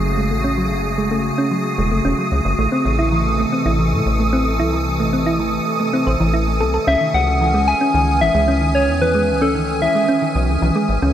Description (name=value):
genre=IDM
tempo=112 BPM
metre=4/4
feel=straight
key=F# dorian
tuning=A4 = 440 Hz
part: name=icy glass pad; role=sustained chords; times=0.0-11.1 s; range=C3 to G#5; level=-22 LUFS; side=right 1 dB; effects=chorus, built-in reverb
part: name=thumb-piano-like synth pluck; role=arpeggios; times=0.0-11.1 s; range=D#3 to C5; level=-21 LUFS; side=right 1 dB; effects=chorus, cassette tape, tape echo
part: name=deep acid bass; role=bass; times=0.0-11.1 s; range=E1 to A2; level=-20 LUFS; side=equal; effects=none
part: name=flickering grainy texture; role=texture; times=0.0-11.1 s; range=D#6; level=-26 LUFS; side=right 1 dB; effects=built-in reverb
part: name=soft struck synth lead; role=melody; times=6.9-10.6 s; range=A4 to G#5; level=-18 LUFS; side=left 1 dB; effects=chorus, tape echo
room=moderate huge ambient reverb, RT60 5.1 s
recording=none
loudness=-15 LUFS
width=side -10 dB against mid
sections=0.0-11.1 A section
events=none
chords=0.0 F#madd9; 2.6 Am; 6.9 C#madd9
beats=| 0.44 0.98 1.51 2.05 | 2.59 3.12 3.66 4.19 | 4.73 5.26 5.80 6.34 | 6.87 7.41 7.94 8.48 | 9.02 9.55 10.09 10.62